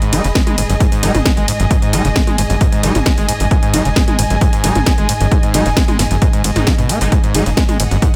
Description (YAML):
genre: driving peak-time techno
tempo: 133 BPM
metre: 4/4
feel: straight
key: G# minor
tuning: A4 = 440 Hz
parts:
  - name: screaming distorted acid line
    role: riff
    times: 0.0-8.1 s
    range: F#2 to B3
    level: -22 LUFS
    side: equal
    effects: distortion, chorus, sidechain pumping, digital delay
  - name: metallic inharmonic drone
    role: drone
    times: 0.7-8.2 s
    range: G#2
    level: -28 LUFS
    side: equal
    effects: none
  - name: techno drum kit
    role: drums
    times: 0.0-8.1 s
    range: hi-hat, ride cymbal, snare drum, toms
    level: -22 LUFS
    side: equal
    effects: sidechain pumping on hats, sidechain pumping on toms, sidechain pumping on cymbals
  - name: muted studio string section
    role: texture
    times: 0.0-8.2 s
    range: G#4 to B5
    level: -25 LUFS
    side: equal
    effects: sidechain pumping
  - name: rave stab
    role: stabs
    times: 0.1-7.4 s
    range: D#3 to D#4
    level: -26 LUFS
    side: equal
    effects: none
  - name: tight sequencer bass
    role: bass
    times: 0.1-8.0 s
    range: F#1 to G#2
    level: -20 LUFS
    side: equal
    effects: sidechain pumping
  - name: electronic kick drum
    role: drums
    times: 0.4-8.1 s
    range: none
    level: -17 LUFS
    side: equal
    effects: none
room: little or no reverb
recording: none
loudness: -14 LUFS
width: mono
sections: 0.0-8.2 A section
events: none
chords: 0.0 G#5